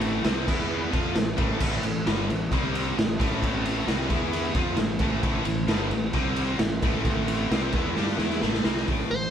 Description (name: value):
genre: hard rock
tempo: 132 BPM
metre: 4/4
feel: straight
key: A minor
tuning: A4 = 441 Hz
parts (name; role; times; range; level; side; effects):
- warm analog pad; sustained chords; 0.0-8.9 s; E4 to C6; -41 LUFS; left 2 dB; none
- distorted electric guitar; riff; 0.0-9.3 s; G2 to G4; -32 LUFS; left 9 dB; overdrive
- heavy high-gain guitar; riff; 0.0-8.9 s; G2 to G4; -34 LUFS; equal; distortion
- overdriven semi-hollow guitar; riff; 0.0-9.3 s; G2 to G4; -34 LUFS; right 9 dB; none
- fuzz fingered electric bass; bass; 0.0-9.2 s; G1 to G2; -30 LUFS; equal; overdrive
- raw garage drum kit; drums; 0.0-9.0 s; crash cymbal, hi-hat, kick drum, ride cymbal, snare drum; -26 LUFS; equal; none
- dark smooth lead guitar; melody; 9.1-9.3 s; C5; -26 LUFS; right 1 dB; overdrive
room: light reverb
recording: band playing live in one room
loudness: -23 LUFS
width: side -9 dB against mid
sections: 0.0-8.9 A section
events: drum fill 8.0-8.9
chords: 0.5 E5; 0.9 Am; 2.5 C5; 3.0 Am; 4.1 E5; 4.6 Am; 6.1 C5; 6.6 Am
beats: 0.24 0.70 1.15 | 1.61 2.06 2.51 2.97 | 3.42 3.88 4.33 4.78 | 5.24 5.69 6.15 6.60 | 7.06 7.51 7.97 8.43 | 8.88